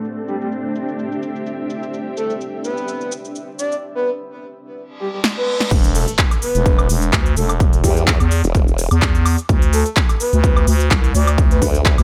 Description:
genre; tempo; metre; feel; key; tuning
bass house; 127 BPM; 4/4; swing 55% on 16ths; E minor; A4 = 440 Hz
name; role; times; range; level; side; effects
big-room dance drum kit; drums; 0.0-12.0 s; cabasa, crash cymbal, handclaps, hi-hat, snare drum, woodblock; -24 LUFS; equal; none
granular cloud pad; texture; 0.0-3.8 s; A3 to E5; -28 LUFS; equal; built-in reverb, sidechain pumping
breathy flute-like synth lead; melody; 0.3-11.7 s; G4 to D5; -26 LUFS; equal; lush chorus, digital delay
reverse cymbal and impact; sound effects; 4.9-7.6 s; none; -31 LUFS; equal; none
growling FM bass; bass; 5.7-12.0 s; E1 to E2; -18 LUFS; equal; overdrive, sidechain pumping
electronic kick drum; drums; 5.7-12.0 s; none; -18 LUFS; equal; none
formant-sweep wobble bass; bass; 7.8-12.0 s; E1 to E2; -21 LUFS; equal; chorus, tube saturation, sidechain pumping
room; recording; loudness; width
digital ambience; low-pass filter; -17 LUFS; mono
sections
0.0-5.7 A section; 5.7-12.0 B section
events
filter sweep 0.0-5.7; reverse cymbal 4.9-5.7; drum fill 5.2-5.7; drop 5.7-12.0; impact 5.7-7.6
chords
0.0 Am; 1.9 C; 5.7 E5; 9.5 Bm

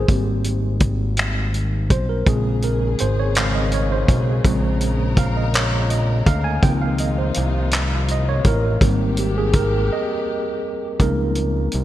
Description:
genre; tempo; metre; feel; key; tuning
slow six-eight R&B; 55 BPM (dotted quarters); 6/8; straight; Bb dorian; A4 = 440 Hz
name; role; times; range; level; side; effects
tine electric piano; accompaniment; 0.0-11.8 s; Db3 to Ab5; -23 LUFS; right 1 dB; overdrive, fast stereo tremolo
fat analog bass; bass; 0.0-11.8 s; Ab1 to D2; -20 LUFS; equal; none
warm soul drum kit; drums; 0.1-11.8 s; finger snaps, handclaps, hi-hat, kick drum; -19 LUFS; equal; gated reverb
warm studio string section; sustained chords; 2.3-11.0 s; C3 to Bb4; -31 LUFS; left 2 dB; none
room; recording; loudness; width
light reverb, small room ambience; bright 1980s-style digital production; -17 LUFS; side -13 dB against mid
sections
0.0-11.0 A section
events
tine electric piano solo 0.0-11.0; break 9.9-11.0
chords
0.1 Abmaj9; 2.3 Bbm7; 6.6 Dbmaj13; 8.8 Abmaj9; 11.0 Dbmaj9#11

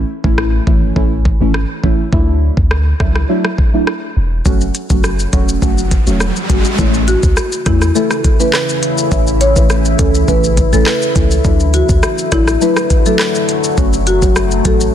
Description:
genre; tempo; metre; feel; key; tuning
dancehall; 103 BPM; 4/4; straight; A major; A4 = 440 Hz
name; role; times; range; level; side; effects
clean 808-style bass; bass; 0.0-14.9 s; E1 to E2; -15 LUFS; equal; none
deep mellow chord stab; accompaniment; 0.2-14.9 s; E3 to F#4; -18 LUFS; equal; chorus, phaser
island pop drum kit; drums; 0.2-14.9 s; handclaps, hi-hat, kick drum, rim click, shaker; -15 LUFS; equal; vintage 12-bit sampler grit, soft clipping on snare
riser; sound effects; 5.6-6.8 s; none; -22 LUFS; right 2 dB; none
deep dark ambient pad; sustained chords; 7.6-14.9 s; C#3 to F#4; -19 LUFS; left 2 dB; chorus, built-in reverb, sidechain pumping
marimba with medium mallets; melody; 7.1-14.8 s; E4 to C#5; -17 LUFS; equal; ping-pong delay
room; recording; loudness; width
light reverb; dense, heavily limited modern master; -11 LUFS; side -10 dB against mid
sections
0.0-6.8 A section; 6.8-14.9 B section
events
riser 5.6-6.8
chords
0.0 A; 2.1 Dadd9; 4.5 F#m; 6.8 A; 11.4 Dadd9; 13.8 F#m

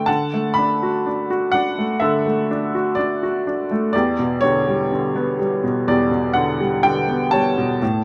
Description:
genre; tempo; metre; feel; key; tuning
classical, lyrical solo piano; 62 BPM; 4/4; rubato; unclear; A4 = 440 Hz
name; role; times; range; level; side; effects
clear upright piano; solo; 0.0-8.0 s; E2 to B5; -20 LUFS; equal; none
room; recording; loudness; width
moderate studio reverb, RT60 0.6 s; none; -20 LUFS; mono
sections
0.0-8.0 A section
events
none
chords
0.1 Bm7/D; 3.9 Em7

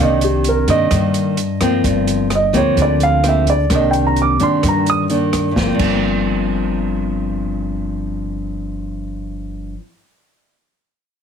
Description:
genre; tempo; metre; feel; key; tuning
bossa nova; 129 BPM; 4/4; straight; G minor; A4 = 437 Hz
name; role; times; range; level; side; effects
dark baby grand piano; melody; 0.0-5.0 s; G4 to Eb6; -17 LUFS; right 3 dB; none
nylon-string guitar; accompaniment; 0.0-9.9 s; G2 to D4; -18 LUFS; left 2 dB; none
upright bass; bass; 0.0-9.7 s; G1 to G2; -22 LUFS; equal; none
open jazz drum kit; drums; 0.2-5.9 s; crash cymbal, hi-hat, kick drum, rim click, snare drum; -23 LUFS; right 1 dB; none
room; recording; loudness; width
moderate studio reverb, RT60 0.6 s; heavily compressed radio sound; -14 LUFS; side -7 dB against mid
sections
0.0-5.6 A section; 5.6-9.3 B section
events
grand piano solo 0.0-5.6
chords
0.0 Cm9; 1.8 Gm7; 3.7 Cm9; 5.6 Gm7

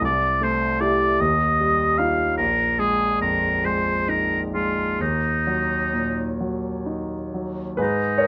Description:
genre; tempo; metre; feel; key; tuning
classical, impressionist duo for oboe and grand piano; 42-51 BPM (dotted quarters); 6/8; rubato; Eb dorian; A4 = 440 Hz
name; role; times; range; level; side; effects
clear oboe; melody; 0.0-8.3 s; Eb4 to F5; -24 LUFS; equal; none
clear concert grand piano; accompaniment; 0.0-8.3 s; Bb1 to C#5; -26 LUFS; equal; none
room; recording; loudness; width
moderate studio reverb, RT60 0.8 s; nothing above 10.4 kHz; -22 LUFS; mono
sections
0.0-7.8 A section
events
none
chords
0.0 C6; 1.2 Ebadd9; 2.4 Bb7sus4; 5.0 Ebm

